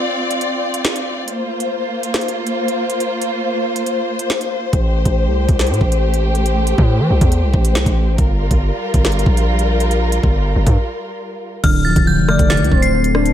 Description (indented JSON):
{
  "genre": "hip hop, drill",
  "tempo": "139 BPM",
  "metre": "4/4",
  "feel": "half-time",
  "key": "D minor",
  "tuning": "A4 = 440 Hz",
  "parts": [
    { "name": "warm symphonic string section", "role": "sustained chords", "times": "0.0-11.6 s", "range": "G3 to D5", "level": "-20 LUFS", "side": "left 1 dB", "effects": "none" },
    { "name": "drill drum kit", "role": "drums", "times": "0.3-13.3 s", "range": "crash cymbal, handclaps, hi-hat, kick drum, rim click, snare drum", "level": "-18 LUFS", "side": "equal", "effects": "none" },
    { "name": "distorted 808-style bass", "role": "bass", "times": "4.7-13.3 s", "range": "D1 to E3", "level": "-16 LUFS", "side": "equal", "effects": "distortion" },
    { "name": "metallic FM bell", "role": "melody", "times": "11.6-13.3 s", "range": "F6 to C7", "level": "-20 LUFS", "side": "left 1 dB", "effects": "chorus, analog delay" },
    { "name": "warbly lo-fi synth keys", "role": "accompaniment", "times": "11.6-13.3 s", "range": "D3 to D4", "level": "-16 LUFS", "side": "left 1 dB", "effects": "chorus" },
    { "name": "gliding portamento lead", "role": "second line", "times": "12.3-12.9 s", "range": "C5 to D5", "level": "-22 LUFS", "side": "equal", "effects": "chorus, analog delay" }
  ],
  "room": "moderate plate reverb, RT60 1.3 s",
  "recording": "dreamy mix soaked in reverb",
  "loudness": "-14 LUFS",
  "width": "side -10 dB against mid",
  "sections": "0.0-11.6 A section; 11.6-13.3 B section",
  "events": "break 0.0-4.7, 10.8-11.6",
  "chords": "0.0 Dm7; 1.3 C7sus4; 4.7 Am7; 8.2 Gm7; 11.6 Dm7"
}